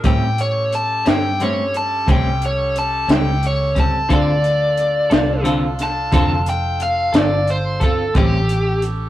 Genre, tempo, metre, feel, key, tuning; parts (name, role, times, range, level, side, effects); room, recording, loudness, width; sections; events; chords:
slow blues; 59 BPM (dotted quarters); 12/8; straight; D minor; A4 = 439 Hz
clean electric guitar; accompaniment; 0.0-8.4 s; A2 to A4; -22 LUFS; left 1 dB; tremolo
bright saxophone section; sustained chords; 0.0-9.1 s; C#4 to A4; -30 LUFS; right 2 dB
vintage muted fingered electric bass; bass; 0.0-9.1 s; F1 to A2; -21 LUFS; right 1 dB
compact cocktail drum kit; drums; 0.0-9.0 s; hi-hat, kick drum, snare drum; -18 LUFS; equal
overdriven electric guitar; melody; 0.1-8.8 s; G4 to A5; -20 LUFS; left 1 dB
moderate studio reverb, RT60 0.6 s; rough rehearsal-room recording; -15 LUFS; side -14 dB against mid
0.0-9.1 A section
overdriven electric guitar solo 0.0-9.1
0.0 A7#9; 4.1 Dm7; 8.2 A7#9